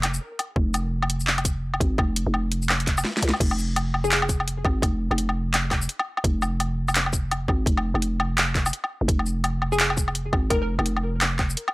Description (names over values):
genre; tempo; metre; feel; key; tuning
half-time drum and bass; 169 BPM; 4/4; swing 60% on 16ths, half-time; F minor; A4 = 439 Hz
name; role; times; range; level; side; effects
growling 808-style bass; bass; 0.0-11.6 s; F1 to C2; -25 LUFS; equal; none
drum and bass drum kit; drums; 0.0-11.7 s; crash cymbal, handclaps, hi-hat, shaker, snare drum, woodblock; -24 LUFS; equal; overdrive
electronic kick drum; drums; 0.6-11.5 s; none; -24 LUFS; equal; overdrive
hollow square pluck; melody; 4.0-4.3, 9.7-10.7 s; Ab4 to Bb4; -29 LUFS; left 2 dB; ensemble chorus, vintage 12-bit sampler grit, analog delay
room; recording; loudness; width
digital ambience; dry, gritty hardware recording; -21 LUFS; side -20 dB against mid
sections
0.0-3.4 A section; 3.4-11.7 A section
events
drop 0.0-3.4, 3.4-11.7; drum fill 3.0-3.4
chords
0.0 F5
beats
0.21 | 0.56 0.92 1.27 1.63 | 1.98 2.34 2.69 3.05 | 3.40 3.76 4.11 4.47 | 4.82 5.18 5.53 5.89 | 6.24 6.60 6.95 7.31 | 7.66 8.02 8.37 8.73 | 9.08 9.44 9.79 10.15 | 10.50 10.86 11.21 11.57